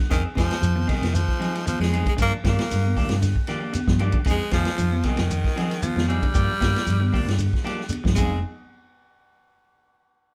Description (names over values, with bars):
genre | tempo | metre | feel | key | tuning
afrobeat | 115 BPM | 4/4 | straight | F dorian | A4 = 440 Hz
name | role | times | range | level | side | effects
clean electric guitar | arpeggios | 0.0-8.3 s | C3 to F3 | -34 LUFS | equal | none
raspy tenor saxophone | melody | 0.1-8.4 s | Eb3 to Bb3 | -30 LUFS | equal | none
clean electric guitar | stabs | 0.1-8.4 s | F3 to Ab4 | -34 LUFS | equal | none
fingered electric bass | bass | 0.1-8.4 s | F1 to G2 | -26 LUFS | equal | none
vintage drum kit | drums | 0.1-8.3 s | crash cymbal, hi-hat, kick drum, ride cymbal, snare drum | -28 LUFS | equal | none
congas | percussion | 0.1-8.3 s | none | -35 LUFS | equal | none
shekere | percussion | 0.1-8.3 s | none | -33 LUFS | equal | none
room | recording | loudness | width
light reverb | band playing live in one room | -23 LUFS | mono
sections
0.0-8.4 A section; 8.4-10.3 B section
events
none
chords
0.1 Fm7; 2.2 Gm7; 4.3 Fm7; 6.4 Gm7; 8.2 Fm7; 8.4 N.C.